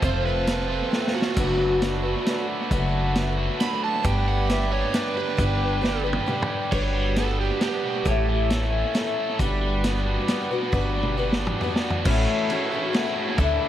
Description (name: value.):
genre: folk rock and heartland rock.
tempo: 135 BPM.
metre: 3/4.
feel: straight.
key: unclear.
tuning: A4 = 440 Hz.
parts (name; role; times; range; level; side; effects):
overdriven slide guitar; second line; 0.0-8.5 s; F#4 to B5; -29 LUFS; right 7 dB; none.
picked twelve-string acoustic guitar; accompaniment; 0.0-13.7 s; A2 to B4; -28 LUFS; left 5 dB; none.
accordion; sustained chords; 0.0-13.7 s; C4 to E6; -35 LUFS; right 3 dB; none.
biting overdriven guitar; riff; 0.0-13.7 s; F2 to A4; -29 LUFS; right 3 dB; dub echo.
upright bass; bass; 0.0-13.6 s; F1 to D2; -26 LUFS; equal; none.
vintage drum kit; drums; 0.0-13.5 s; crash cymbal, hi-hat, kick drum, ride cymbal, snare drum, toms; -28 LUFS; equal; dub echo.
room: light reverb.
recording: echo-heavy mix.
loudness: -21 LUFS.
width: side -11 dB against mid.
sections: 0.0-6.7 A section; 6.7-12.1 B section; 12.1-13.7 C section.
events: electric slide guitar solo 0.0-6.7; drum fill 0.9-1.4, 5.8-6.7, 10.7-12.1.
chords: 0.0 F; 1.4 D6/F#; 4.0 G; 6.7 Gmaj7; 8.1 A; 9.4 Gmaj7; 12.1 A6.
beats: | 0.03 0.47 0.92 | 1.37 1.82 2.26 | 2.71 3.16 3.60 | 4.05 4.50 4.94 | 5.39 5.83 6.28 | 6.72 7.17 7.61 | 8.06 8.50 8.95 | 9.39 9.84 10.28 | 10.72 11.17 11.61 | 12.05 12.50 12.94 | 13.38.